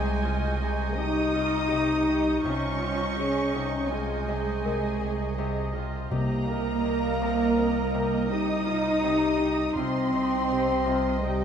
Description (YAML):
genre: cinematic, suspense film score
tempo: 82 BPM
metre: 5/4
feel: straight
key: C phrygian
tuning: A4 = 440 Hz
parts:
  - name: muted symphonic violin section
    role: melody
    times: 0.0-11.4 s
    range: Eb5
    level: -38 LUFS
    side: left 1 dB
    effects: none
  - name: muted symphonic violin section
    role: second line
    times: 0.0-11.4 s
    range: G5 to Eb6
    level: -34 LUFS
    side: left 1 dB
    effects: none
  - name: muted chamber viola section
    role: accompaniment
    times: 0.0-11.4 s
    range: Eb4 to Bb4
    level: -34 LUFS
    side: right 3 dB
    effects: none
  - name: mellow French horn section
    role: sustained chords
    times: 0.0-11.4 s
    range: G3 to Eb4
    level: -28 LUFS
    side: left 2 dB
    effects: none
  - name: Celtic harp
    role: riff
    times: 0.0-11.4 s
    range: C3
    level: -36 LUFS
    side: left 5 dB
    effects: none
  - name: muted symphonic cello section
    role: bass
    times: 0.0-11.4 s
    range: G3 to Eb4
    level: -31 LUFS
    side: right 4 dB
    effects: none
  - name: muted symphonic double bass section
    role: bass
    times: 0.0-11.4 s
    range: C2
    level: -34 LUFS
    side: right 5 dB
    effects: none
  - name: punchy sub bass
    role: drone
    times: 0.0-11.4 s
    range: C2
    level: -35 LUFS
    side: equal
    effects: none
  - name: muted chamber violin section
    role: texture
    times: 0.0-5.7 s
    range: Db6 to G6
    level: -39 LUFS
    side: right 4 dB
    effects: none
  - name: small celesta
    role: texture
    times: 0.0-11.4 s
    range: C4 to Eb5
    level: -39 LUFS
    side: left 3 dB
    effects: none
  - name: timpani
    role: percussion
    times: 6.1-7.2 s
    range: C3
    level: -32 LUFS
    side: left 1 dB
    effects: none
room: wet concert hall reverb, RT60 2.3 s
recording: nothing above 10.7 kHz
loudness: -24 LUFS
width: side -8 dB against mid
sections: 0.0-11.4 A section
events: none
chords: 0.0 Dbadd9/C; 6.1 Cm7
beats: 0.25 0.98 1.72 | 2.45 3.18 3.91 4.64 5.37 | 6.11 6.84 7.57 8.30 9.03 | 9.76 10.50 11.23